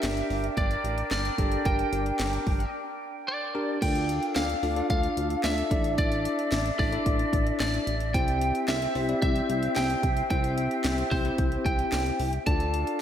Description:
synth-pop; 111 BPM; 4/4; straight; D minor; A4 = 440 Hz
lightly driven lead guitar; melody; 0.0-13.0 s; C5 to A5; -31 LUFS; right 1 dB; analog delay
bell-like tine electric piano; accompaniment; 0.0-13.0 s; C4 to D5; -31 LUFS; left 2 dB; medium stereo tremolo
mellow flute section; sustained chords; 0.0-13.0 s; C4 to G5; -34 LUFS; equal
chorused synth bass; bass; 0.0-12.8 s; G1 to D2; -31 LUFS; equal
house drum kit; drums; 0.0-13.0 s; crash cymbal, handclaps, hi-hat, kick drum, snare drum; -30 LUFS; equal
wet lush hall reverb, RT60 2.0 s; dreamy mix soaked in reverb; -24 LUFS; side -10 dB against mid
0.0-3.8 A section; 3.8-13.0 B section
break 2.7-3.8
0.0 Gm; 3.8 Dm; 5.7 Asus4; 8.1 C; 12.5 Dm
0.04 0.58 1.12 | 1.66 2.20 2.74 3.28 | 3.82 4.36 4.90 5.44 | 5.98 6.52 7.06 7.60 | 8.14 8.68 9.22 9.77 | 10.31 10.85 11.39 11.93 | 12.47 13.01

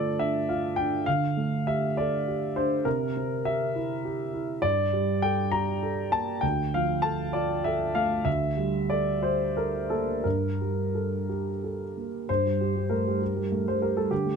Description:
neoclassical minimalist piano; 57-69 BPM (dotted quarters); 6/8; rubato; G dorian; A4 = 440 Hz
dark baby grand piano; solo; 0.0-14.4 s; D2 to Bb5; -25 LUFS; equal
light reverb; close, detailed microphones; -25 LUFS; side -6 dB against mid
0.0-12.3 A section; 12.3-14.4 B section
0.0 Dm; 1.1 Gsus2/D; 2.9 C; 4.6 Gmadd9; 6.4 Dm; 8.3 Gmadd9/D; 10.2 Gmadd9
0.18 | 1.06 1.96 | 2.85 3.75 | 4.63 5.52 | 6.42 7.33 | 8.26 9.22 | 10.24 11.28 | 12.28 13.21 | 14.11

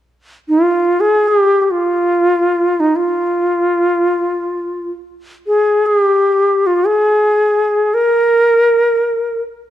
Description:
indian classical; free time; F raga bhimpalasi; A4 = 440 Hz
bright reedy bansuri; solo; 0.5-9.4 s; Eb4 to Bb4; -12 LUFS; equal
moderate recital hall reverb, RT60 1.6 s; dark, warm production; -12 LUFS; side -12 dB against mid
0.0-9.7 A section
free time

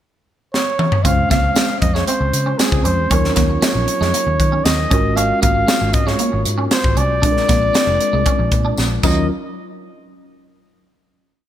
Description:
polished 1980s jazz-funk pop; 117 BPM; 4/4; straight; A4 = 440 Hz
mellow flugelhorn; melody; 0.5-9.3 s; Ab4 to F5; -20 LUFS; equal
crisp fusion drum kit; drums; 0.5-9.2 s; crash cymbal, hi-hat, kick drum, snare drum, toms; -18 LUFS; equal; gated reverb
mellow tine electric piano; accompaniment; 1.0-9.3 s; Gb3 to C5; -23 LUFS; left 1 dB; medium stereo tremolo, lush chorus
clean electric guitar; riff; 1.0-9.2 s; Ab3 to Eb4; -26 LUFS; right 3 dB; ensemble chorus
vintage muted fingered electric bass; bass; 1.0-9.3 s; F1 to Eb3; -20 LUFS; equal
tambourine; percussion; 1.6-9.3 s; -31 LUFS; left 6 dB
light reverb, small room ambience; bright 1980s-style digital production; -14 LUFS; side -11 dB against mid
0.0-1.1 pickup bar; 1.1-9.3 pre-chorus; 9.3-11.3 final hit
drum fill 0.5-1.1, 8.8-9.3
0.0 N.C.; 1.1 Dbmaj7; 3.1 Ebm9; 4.9 Ab13sus4; 7.2 Bb9; 9.0 Ebm9; 9.3 N.C.
0.02 0.54 | 1.05 1.57 2.08 2.60 | 3.11 3.63 4.14 4.66 | 5.17 5.69 6.20 6.72 | 7.23 7.75 8.26 8.77 | 9.29

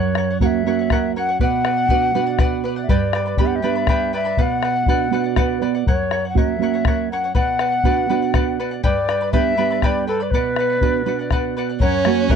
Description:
andean folk, Andean ensemble; 81 BPM (dotted quarters); 6/8; straight; B harmonic minor; A4 = 441 Hz
large quena; melody; 0.0-12.4 s; A4 to F#5; -21 LUFS; left 3 dB
charango; accompaniment; 0.0-12.4 s; G4 to B5; -26 LUFS; left 3 dB
nylon-string guitar; accompaniment; 0.0-12.4 s; F#2 to D5; -21 LUFS; right 13 dB
bombo; percussion; 0.2-12.4 s; -20 LUFS; left 2 dB
bright violin; second line; 11.8-12.4 s; C#4 to A#4; -22 LUFS; right 11 dB
little or no reverb; dry, close 1970s-style studio recording; -16 LUFS; side -7 dB against mid
0.0-11.8 A section
nylon-string guitar fill 5.1-5.9
0.0 F#; 1.4 Bm; 2.9 G; 4.4 Bm; 5.9 F#; 7.4 Bm; 8.8 G; 10.3 Bm; 11.8 F#
0.66 | 1.40 2.15 | 2.89 3.64 | 4.38 5.12 | 5.87 6.61 | 7.35 8.10 | 8.84 9.58 | 10.33 11.07 | 11.81

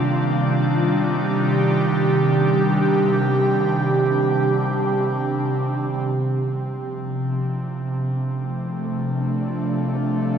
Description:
ambient; free time; A4 = 438 Hz
airy breathy pad; sustained chords; 0.0-10.4 s; C3 to G4; -19 LUFS; right 1 dB; chorus
soft synth bell; arpeggios; 0.0-9.1 s; barely audible
organ-like drone; drone; 0.0-10.4 s; G3 to D4; -29 LUFS; left 1 dB; ensemble chorus, built-in reverb
wet echo chamber reverb, RT60 2.3 s; echo-heavy mix; -19 LUFS; side -7 dB against mid
0.0-6.2 A section; 6.2-10.4 B section
0.0 Cmadd9; 6.2 Dm7
free time

